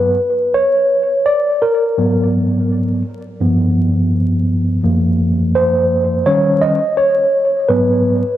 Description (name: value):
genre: hip hop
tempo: 84 BPM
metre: 4/4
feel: swing 64% on 16ths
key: unclear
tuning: A4 = 437 Hz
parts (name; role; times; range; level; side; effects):
- mellow tine electric piano; solo; 0.0-8.4 s; F#2 to D#5; -12 LUFS; equal; medium stereo tremolo, cassette tape, tape echo
room: moderate spring reverb, RT60 2.6 s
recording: home recording on cassette, vinyl crackle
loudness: -12 LUFS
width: side -12 dB against mid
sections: 0.0-8.4 A section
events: tine electric piano solo 0.0-8.4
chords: 0.0 G (rootless); 2.0 G#m7; 3.4 G7; 4.8 F#maj7#11; 6.3 D#7; 7.7 G#m7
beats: 0.55 1.26 | 1.98 2.69 3.41 4.12 | 4.84 5.55 6.26 6.98 | 7.69